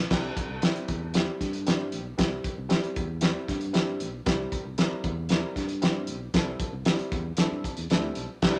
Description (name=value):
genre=uptempo 1960s-style soul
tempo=116 BPM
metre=4/4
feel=straight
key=unclear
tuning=A4 = 438 Hz
part: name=fingered electric bass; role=bass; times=0.0-8.6 s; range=B1 to G2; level=-37 LUFS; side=equal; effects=none
part: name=dark upright piano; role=accompaniment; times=0.1-8.6 s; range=G3 to Bb4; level=-35 LUFS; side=equal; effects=none
part: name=cloth-damped thuddy drum kit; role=drums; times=0.1-8.5 s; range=crash cymbal, hi-hat, kick drum, snare drum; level=-29 LUFS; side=equal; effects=none
room=moderate small room reverb, RT60 0.5 s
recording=none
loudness=-28 LUFS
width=mono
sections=0.1-8.4 A section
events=none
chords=0.1 C